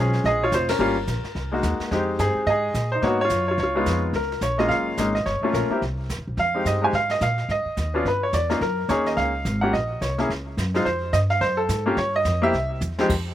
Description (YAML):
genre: jazz piano trio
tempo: 215 BPM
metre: 4/4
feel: swing 60% on 8ths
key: F minor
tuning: A4 = 439 Hz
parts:
  - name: bright upright piano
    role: melody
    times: 0.0-13.1 s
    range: F2 to Ab5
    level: -22 LUFS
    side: equal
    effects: none
  - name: upright bass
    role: bass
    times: 0.0-13.3 s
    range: F1 to Bb2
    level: -26 LUFS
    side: equal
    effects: none
  - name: jazz brush drum kit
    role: drums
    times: 0.1-13.3 s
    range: brushed snare drum, crash cymbal, hi-hat, kick drum, ride cymbal, snare drum, toms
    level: -33 LUFS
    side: right 1 dB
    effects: none
room: little or no reverb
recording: recorded outdoors, with no room sound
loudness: -20 LUFS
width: side -12 dB against mid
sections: 0.0-4.1 A section; 4.1-13.1 B section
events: band accent 0.7; drum fill 12.8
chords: 0.0 Bbm7; 0.8 Gm7b5; 1.4 Ab9/C; 1.9 Fm7; 3.0 Abm7; 3.6 Db7; 4.1 Gbmaj9; 5.3 Gm7b5; 5.8 C7; 6.4 Fm7; 7.5 Ab5; 8.1 Em6; 8.6 Gb6; 9.7 Bbmadd9; 10.3 Gb5; 10.9 F5; 11.4 Gbmadd9; 12.0 Eb9; 12.5 C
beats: 0.24 0.52 | 0.80 1.08 1.35 1.63 | 1.91 2.19 2.47 2.75 | 3.03 3.31 3.58 3.86 | 4.14 4.42 4.70 4.98 | 5.26 5.54 5.82 6.09 | 6.38 6.65 6.93 7.21 | 7.49 7.77 8.05 8.33 | 8.61 8.89 9.17 9.45 | 9.73 10.01 10.29 10.57 | 10.85 11.13 11.41 11.69 | 11.97 12.25 12.53 12.81 | 13.09